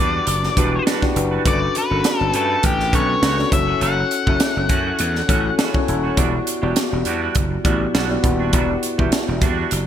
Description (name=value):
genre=polished 1980s jazz-funk pop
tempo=102 BPM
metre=4/4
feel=swing 54% on 16ths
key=E dorian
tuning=A4 = 440 Hz
part: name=octave-fuzz lead guitar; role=melody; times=0.0-5.6 s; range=G4 to F#5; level=-22 LUFS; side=left 3 dB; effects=distortion, digital delay
part: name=tine electric piano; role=accompaniment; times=0.0-9.9 s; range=B3 to E5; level=-23 LUFS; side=left 2 dB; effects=lush chorus
part: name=clean electric guitar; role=riff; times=0.0-9.8 s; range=E3 to C#5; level=-28 LUFS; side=right 8 dB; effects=analog chorus
part: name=gritty slap bass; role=bass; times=0.0-9.9 s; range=D#1 to G2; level=-23 LUFS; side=equal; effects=overdrive
part: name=crisp fusion drum kit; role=drums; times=0.3-9.9 s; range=hi-hat, kick drum, snare drum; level=-20 LUFS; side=right 1 dB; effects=gated reverb
room=light reverb, small room reverb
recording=bright 1980s-style digital production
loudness=-16 LUFS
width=side -10 dB against mid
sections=0.0-9.9 A section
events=none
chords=0.0 Em9; 1.5 Gmaj9#11; 3.5 F#m7; 6.2 Em9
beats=0.27 0.86 | 1.45 2.04 2.63 3.23 | 3.81 4.41 5.00 5.58 | 6.17 6.76 7.36 7.95 | 8.54 9.12 9.71